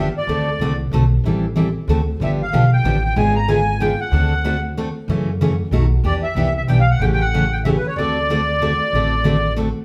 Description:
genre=acoustic string swing (jazz manouche)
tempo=187 BPM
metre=3/4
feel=swing 59% on 8ths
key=D mixolydian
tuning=A4 = 440 Hz
part: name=accordion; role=melody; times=0.0-9.5 s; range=B4 to Bb5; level=-24 LUFS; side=equal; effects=light tremolo tuning
part: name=picked steel-string acoustic guitar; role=accompaniment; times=0.0-9.7 s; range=B2 to A4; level=-22 LUFS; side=equal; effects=none
part: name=upright bass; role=bass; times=0.0-9.7 s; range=G1 to F#2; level=-22 LUFS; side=equal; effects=none
room=wet large studio reverb, RT60 1.1 s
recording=band playing live in one room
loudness=-18 LUFS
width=mono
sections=0.0-9.8 A section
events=none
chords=0.3 D7; 1.2 Am7; 1.9 D7; 2.2 G7; 3.2 G#dim7; 4.1 D7; 5.1 F#m7; 5.7 B7; 6.0 Em7; 7.0 A7; 8.0 D7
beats=| 0.28 0.60 0.92 | 1.24 1.56 1.88 | 2.20 2.52 2.84 | 3.16 3.48 3.80 | 4.12 4.44 4.76 | 5.08 5.40 5.72 | 6.04 6.37 6.69 | 7.01 7.33 7.65 | 7.97 8.29 8.61 | 8.93 9.25 9.57

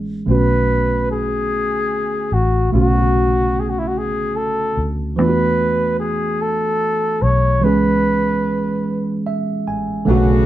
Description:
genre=R&B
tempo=49 BPM (dotted quarters)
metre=6/8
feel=straight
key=B dorian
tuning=A4 = 439 Hz
part: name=tine electric piano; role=accompaniment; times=0.0-10.5 s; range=C#3 to G#5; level=-20 LUFS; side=right 2 dB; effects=none
part: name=vintage muted fingered electric bass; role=bass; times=0.0-10.5 s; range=A1 to E2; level=-20 LUFS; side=left 1 dB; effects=none
part: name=breathy flugelhorn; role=melody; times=0.3-9.3 s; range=E4 to C#5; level=-19 LUFS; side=equal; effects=none
part: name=warm horn section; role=stabs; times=10.1-10.5 s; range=C#3 to F#4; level=-22 LUFS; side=left 4 dB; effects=none
room=moderate studio reverb, RT60 0.9 s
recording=band playing live in one room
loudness=-16 LUFS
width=side -13 dB against mid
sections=0.0-10.1 A section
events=tine electric piano fill 8.8-10.1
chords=0.3 Bm9; 5.2 E7sus4; 7.6 C#m7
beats=| 0.28 1.50 | 2.73 3.95 | 5.17 6.40 | 7.62 8.85 | 10.07

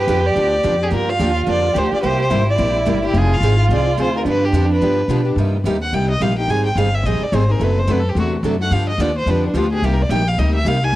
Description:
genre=acoustic string swing (jazz manouche)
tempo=216 BPM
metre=4/4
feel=swing 59% on 8ths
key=C minor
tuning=A4 = 440 Hz
part: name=warm violin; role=melody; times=0.0-11.0 s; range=D4 to Ab5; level=-21 LUFS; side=equal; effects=cassette tape
part: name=dark violin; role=second line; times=0.0-5.3 s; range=D4 to G4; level=-22 LUFS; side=right 5 dB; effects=cassette tape
part: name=upright bass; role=bass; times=0.0-11.0 s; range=F1 to B2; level=-18 LUFS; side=equal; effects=none
part: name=picked steel-string acoustic guitar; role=accompaniment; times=0.1-11.0 s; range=C3 to Ab4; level=-24 LUFS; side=left 5 dB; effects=cassette tape
part: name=picked steel-string acoustic guitar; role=accompaniment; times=0.1-11.0 s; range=C3 to A4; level=-24 LUFS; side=right 5 dB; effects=cassette tape
room=light reverb, studio ambience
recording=home recording on cassette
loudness=-15 LUFS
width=side -15 dB against mid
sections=0.0-5.4 A section; 5.4-11.0 B section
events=violin solo 5.4-11.0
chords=0.0 G7; 0.9 Gm7; 2.0 C7; 3.1 Fm7; 4.3 G7; 5.4 Cm7; 6.5 Abmaj7; 7.6 D7/F#; 8.7 G7; 9.8 Cm9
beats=0.08 0.36 0.64 | 0.91 1.19 1.47 1.75 | 2.03 2.31 2.59 2.87 | 3.14 3.42 3.70 3.98 | 4.26 4.54 4.82 5.09 | 5.37 5.65 5.93 6.21 | 6.49 6.76 7.04 7.32 | 7.60 7.88 8.16 8.43 | 8.71 8.99 9.27 9.55 | 9.82 10.10 10.38 10.66 | 10.94

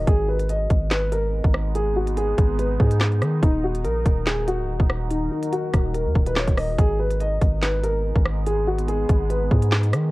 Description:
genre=hip hop, drill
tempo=143 BPM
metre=4/4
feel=half-time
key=G# minor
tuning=A4 = 439 Hz
part: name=dark concert grand piano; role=melody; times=0.0-10.1 s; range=D#4 to D#5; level=-25 LUFS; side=equal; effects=none
part: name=deep dark ambient pad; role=sustained chords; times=0.0-10.1 s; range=D#3 to A#4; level=-32 LUFS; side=right 1 dB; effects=chorus, built-in reverb
part: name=long sustained 808-style bass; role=bass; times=0.0-10.1 s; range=C#1 to D#3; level=-23 LUFS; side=equal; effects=none
part: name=drill drum kit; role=drums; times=0.1-10.0 s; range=handclaps, hi-hat, kick drum, rim click, snare drum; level=-20 LUFS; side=equal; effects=none
room=digital ambience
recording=worn, warbling old tape, cassette tape, warbly pitch drift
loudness=-19 LUFS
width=side -20 dB against mid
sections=0.1-10.1 A section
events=none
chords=0.1 G#m; 3.4 D#m; 6.8 G#m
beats=| 0.07 0.49 0.91 1.33 | 1.75 2.17 2.59 3.01 | 3.43 3.85 4.27 4.69 | 5.11 5.53 5.95 6.37 | 6.79 7.20 7.62 8.04 | 8.46 8.88 9.30 9.72

